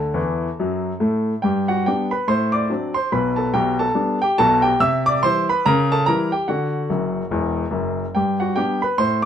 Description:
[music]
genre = jazz, stride piano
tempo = 143 BPM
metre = 4/4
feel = swing 60% on 8ths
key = G major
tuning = A4 = 440 Hz
[part]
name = clear baby grand piano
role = solo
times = 0.0-9.3 s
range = E1 to E6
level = -18 LUFS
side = equal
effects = none
[sound]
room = moderate club reverb, RT60 0.7 s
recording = none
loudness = -18 LUFS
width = side -9 dB against mid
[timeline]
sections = 0.0-1.4 A section; 1.4-9.3 B section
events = grand piano fill 0.2-1.4, 6.9-8.1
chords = 0.0 D; 1.4 G; 2.3 D7/A; 3.1 G/B; 4.8 C; 5.6 C#dim7; 6.5 D; 8.1 G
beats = 0.18 0.60 1.01 | 1.44 1.85 2.27 2.69 | 3.11 3.53 3.95 4.37 | 4.79 5.21 5.63 6.05 | 6.47 6.89 7.31 7.73 | 8.14 8.56 8.98

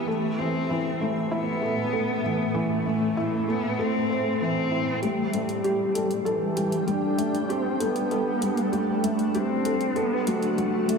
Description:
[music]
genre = piano and strings electronica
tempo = 97 BPM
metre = 4/4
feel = straight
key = G major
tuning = A4 = 440 Hz
[part]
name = warm cello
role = melody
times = 0.0-11.0 s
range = E3 to D4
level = -27 LUFS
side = equal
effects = low-pass filter, diffuse ambient delay
[part]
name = granular cloud pad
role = sustained chords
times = 0.0-11.0 s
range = A2 to G5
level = -30 LUFS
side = equal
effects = built-in reverb
[part]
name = felt-muted upright piano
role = riff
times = 0.0-11.0 s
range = E3 to C5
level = -27 LUFS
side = equal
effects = lush chorus, diffuse ambient delay
[part]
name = electronic hi-hat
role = drums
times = 5.0-11.0 s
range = none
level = -39 LUFS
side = left 1 dB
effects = small room reverb
[sound]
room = wet cathedral reverb, RT60 5.5 s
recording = dreamy mix soaked in reverb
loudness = -23 LUFS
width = side -5 dB against mid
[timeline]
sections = 0.0-5.0 A section; 5.0-11.0 B section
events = filter sweep on felt piano 0.0-5.0; build-up 5.0-11.0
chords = 0.1 Am; 5.0 Gsus2; 10.0 D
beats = | 0.07 0.69 1.31 1.93 | 2.55 3.17 3.79 4.40 | 5.02 5.64 6.26 6.88 | 7.50 8.12 8.73 9.35 | 9.97 10.59

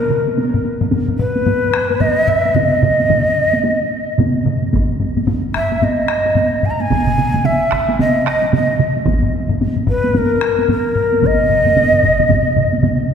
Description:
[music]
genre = japanese traditional, taiko drum ensemble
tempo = 111 BPM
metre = 4/4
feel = swing 60% on 16ths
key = Eb miyako bushi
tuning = A4 = 440 Hz
[part]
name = breathy shakuhachi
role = melody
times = 0.0-13.1 s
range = Bb4 to Bb5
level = -16 LUFS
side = equal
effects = tape echo
[part]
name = taiko ensemble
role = percussion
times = 0.1-13.0 s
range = none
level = -20 LUFS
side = right 4 dB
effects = none
[part]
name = taiko ensemble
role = percussion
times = 0.3-13.0 s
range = none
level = -20 LUFS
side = right 1 dB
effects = none
[part]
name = solo taiko drums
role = percussion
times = 0.5-13.0 s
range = none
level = -20 LUFS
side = left 3 dB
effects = none
[part]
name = taiko ensemble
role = percussion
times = 4.7-12.5 s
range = none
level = -24 LUFS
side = equal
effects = none
[sound]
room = wet concert hall reverb, RT60 2.2 s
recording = heard from further back in the room, faint mains hum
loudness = -13 LUFS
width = side -7 dB against mid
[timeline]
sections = 0.0-13.1 A section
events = none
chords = none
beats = | 0.38 0.93 1.47 2.02 | 2.56 3.11 3.65 4.20 | 4.74 5.29 5.83 6.37 | 6.91 7.45 7.99 8.54 | 9.07 9.61 10.15 10.69 | 11.23 11.77 12.31 12.84

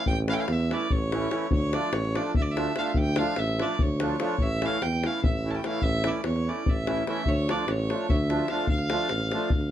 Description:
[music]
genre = balkan folk, Balkan wedding band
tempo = 292 BPM (eighths)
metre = 7/8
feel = straight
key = D harmonic minor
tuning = A4 = 440 Hz
[part]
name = rich fiddle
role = melody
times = 0.0-9.7 s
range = C#5 to A5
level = -31 LUFS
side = right 1 dB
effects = none
[part]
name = accordion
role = accompaniment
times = 0.0-9.5 s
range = E3 to F4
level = -30 LUFS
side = right 1 dB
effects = light tremolo tuning
[part]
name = warm tuba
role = bass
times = 0.1-9.7 s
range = A1 to E2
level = -28 LUFS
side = right 1 dB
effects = none
[part]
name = davul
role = percussion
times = 0.1-9.7 s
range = none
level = -28 LUFS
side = left 2 dB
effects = none
[sound]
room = light reverb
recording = dark, warm production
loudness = -24 LUFS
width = side -11 dB against mid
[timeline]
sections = 0.0-9.7 A section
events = none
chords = 0.0 A; 1.5 Dm; 4.4 A; 7.3 Dm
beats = | 0.06 0.27 0.48 0.68 0.89 1.09 1.30 | 1.51 1.71 1.92 2.12 2.33 2.53 2.74 | 2.95 3.15 3.36 3.56 3.77 3.97 4.18 | 4.38 4.59 4.79 5.00 5.21 5.41 5.62 | 5.82 6.03 6.23 6.44 6.64 6.85 7.05 | 7.26 7.46 7.67 7.87 8.07 8.28 8.48 | 8.69 8.89 9.10 9.30 9.51

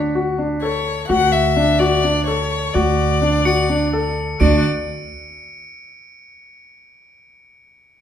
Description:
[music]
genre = contemporary instrumental, chamber music in an uneven meter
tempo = 254 BPM (eighths)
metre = 7/8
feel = straight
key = D major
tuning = A4 = 443 Hz
[part]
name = warm concert grand piano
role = arpeggios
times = 0.0-4.6 s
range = D4 to A4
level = -19 LUFS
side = left 3 dB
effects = none
[part]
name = upright bass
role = bass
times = 0.0-4.6 s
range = D2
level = -21 LUFS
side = right 4 dB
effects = none
[part]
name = warm violin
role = melody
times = 0.6-4.6 s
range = C#5 to F#5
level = -20 LUFS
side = left 4 dB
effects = none
[part]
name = crotales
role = texture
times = 3.5-6.0 s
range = C#7 to D7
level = -31 LUFS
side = equal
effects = none
[part]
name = clear viola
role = second line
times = 4.4-4.6 s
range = F#4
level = -28 LUFS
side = right 6 dB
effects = none
[sound]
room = moderate recital hall reverb, RT60 1.5 s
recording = minimal, uncompressed stereo recording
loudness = -15 LUFS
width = side -9 dB against mid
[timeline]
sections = 0.0-4.4 A section; 4.4-6.0 B section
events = none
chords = 0.0 Dmaj7; 4.4 N.C.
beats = 0.15 0.39 0.62 0.86 | 1.10 1.33 1.57 1.80 2.04 2.28 2.51 | 2.75 2.98 3.22 3.46 3.69 3.93 4.16 | 4.40 4.63 4.87 5.11 5.34 5.58 5.81

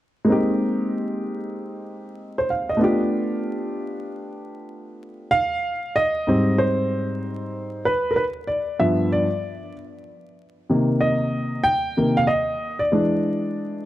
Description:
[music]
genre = hip hop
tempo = 95 BPM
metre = 4/4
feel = swing 63% on 16ths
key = unclear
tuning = A4 = 441 Hz
[part]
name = warm grand piano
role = solo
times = 0.2-13.9 s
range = G2 to G5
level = -21 LUFS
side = equal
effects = none
[sound]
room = light reverb, small room ambience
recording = vinyl crackle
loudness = -20 LUFS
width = side -14 dB against mid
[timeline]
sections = 0.3-5.3 A section; 5.3-13.9 B section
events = grand piano solo 5.3-13.9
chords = 0.3 Abmaj7; 2.8 G7; 5.3 Abmaj7; 7.9 G7; 10.4 Cm7; 12.9 E7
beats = | 0.29 0.92 1.55 2.18 | 2.81 3.44 4.08 4.71 | 5.34 5.97 6.60 7.23 | 7.87 8.50 9.13 9.76 | 10.39 11.02 11.65 12.29 | 12.92 13.55

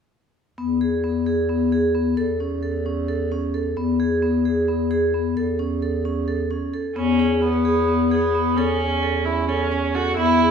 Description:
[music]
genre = contemporary instrumental, contemporary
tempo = 263 BPM (eighths)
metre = 7/8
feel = straight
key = E major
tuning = A4 = 439 Hz
[part]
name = vibraphone with medium hard mallets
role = arpeggios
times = 0.6-10.5 s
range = B3 to A4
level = -21 LUFS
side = left 3 dB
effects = none
[part]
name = dark bass clarinet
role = bass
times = 0.6-10.5 s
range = E2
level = -25 LUFS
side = right 2 dB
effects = none
[part]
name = rich viola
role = second line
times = 7.0-10.5 s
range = B3 to F#4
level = -22 LUFS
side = right 4 dB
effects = none
[sound]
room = wet recital hall reverb, RT60 1.3 s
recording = heard from further back in the room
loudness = -19 LUFS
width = side -7 dB against mid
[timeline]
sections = 0.6-10.5 A section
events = none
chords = 0.6 E; 2.2 A/E; 3.8 E; 5.4 A/E; 7.0 E; 8.6 A/E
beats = | 0.58 0.81 1.04 1.26 1.49 1.72 1.95 | 2.18 2.40 2.63 2.86 3.09 3.32 3.54 | 3.77 4.00 4.23 4.46 4.69 4.92 5.14 | 5.37 5.60 5.83 6.06 6.29 6.51 6.74 | 6.97 7.20 7.43 7.66 7.88 8.11 8.34 | 8.57 8.80 9.03 9.26 9.49 9.71 9.94 | 10.17 10.40

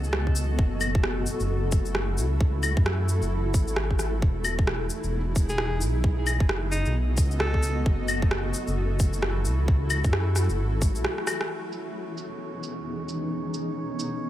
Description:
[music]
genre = future garage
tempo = 132 BPM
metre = 4/4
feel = swing 60% on 16ths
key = F# dorian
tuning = A4 = 439 Hz
[part]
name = granular cloud pad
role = sustained chords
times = 0.0-14.3 s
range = B2 to D#5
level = -32 LUFS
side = equal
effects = built-in reverb, sidechain pumping
[part]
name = dark detuned saw bass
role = bass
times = 0.0-11.0 s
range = E1 to F#2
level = -26 LUFS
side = equal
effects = sidechain pumping
[part]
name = electronic shaker, rim click, claves and cabasa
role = drums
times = 0.0-14.1 s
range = none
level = -30 LUFS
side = equal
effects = overdrive, low-pass filter on snare, low-pass filter on perc, low-pass filter on room
[part]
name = electronic kick drum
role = drums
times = 0.3-10.9 s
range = none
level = -23 LUFS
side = equal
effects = overdrive
[part]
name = bright alto saxophone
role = melody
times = 5.5-7.9 s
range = D#4 to A4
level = -37 LUFS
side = equal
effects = vintage 12-bit sampler grit, dub echo
[part]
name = drifting glass-harmonics texture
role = texture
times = 11.9-14.3 s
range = C#4 to C#5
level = -38 LUFS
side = right 2 dB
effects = chorus, built-in reverb
[sound]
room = digital ambience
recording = none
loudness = -23 LUFS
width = side -13 dB against mid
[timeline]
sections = 0.0-11.5 A section; 11.5-14.3 B section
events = drum fill 11.2-11.5; band accent 11.4; filter sweep on drum 11.5-14.3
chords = 0.0 B7; 0.6 F#m7; 4.2 Emaj7; 6.0 B7; 7.9 F#m7; 11.5 Emaj7; 13.3 B7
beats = 0.13 | 0.59 1.04 1.50 1.95 | 2.41 2.86 3.31 3.77 | 4.22 4.68 5.13 5.59 | 6.04 6.50 6.95 7.41 | 7.86 8.31 8.77 9.22 | 9.68 10.13 10.59 11.04 | 11.50 11.95 12.41 12.86 | 13.31 13.77 14.22

